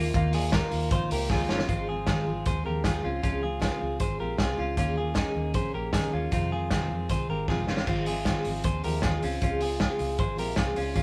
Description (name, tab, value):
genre	jangly indie pop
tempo	155 BPM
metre	4/4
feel	straight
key	Ab major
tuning	A4 = 438 Hz
part	picked steel-string acoustic guitar	accompaniment	0.0-11.0 s	F2 to Ab4	-34 LUFS	equal	none
part	direct-recorded clean electric guitar	arpeggios	0.0-11.0 s	Bb3 to C5	-34 LUFS	equal	none
part	vintage muted fingered electric bass	bass	0.0-11.0 s	G1 to F2	-35 LUFS	equal	none
part	vintage drum kit	drums	0.1-11.0 s	crash cymbal, hi-hat, kick drum, snare drum	-31 LUFS	equal	none
room	light reverb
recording	band playing live in one room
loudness	-28 LUFS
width	mono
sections	0.0-1.7 A section; 1.7-11.0 B section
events	drum fill 1.3-1.7, 7.5-7.9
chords	0.0 Ebsus2; 1.7 Ab6; 3.0 Dbmaj7; 4.8 Eb7sus4; 6.3 Fm7; 7.9 Ab6; 9.2 Dbmaj7